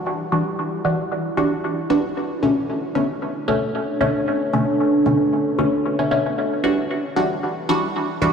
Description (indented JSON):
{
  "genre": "dub techno",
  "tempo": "114 BPM",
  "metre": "4/4",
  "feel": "swing 54% on 16ths",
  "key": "E dorian",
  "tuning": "A4 = 440 Hz",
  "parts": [
    { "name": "deep dark ambient pad", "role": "sustained chords", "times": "0.0-8.3 s", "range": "D4 to D5", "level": "-24 LUFS", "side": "right 1 dB", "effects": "chorus, built-in reverb" },
    { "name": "filtered dub chord stab", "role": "stabs", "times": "0.3-8.3 s", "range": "B2 to F#4", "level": "-20 LUFS", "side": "equal", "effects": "phaser, dub echo" }
  ],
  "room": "wet huge ambient reverb, RT60 6.0 s",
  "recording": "played on a big sound system in a bare room, large studio reverb",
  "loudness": "-18 LUFS",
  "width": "side -6 dB against mid",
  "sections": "0.0-6.4 A section; 6.4-8.3 B section",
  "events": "none",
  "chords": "0.0 Em9; 2.2 Bm9; 6.4 Em9"
}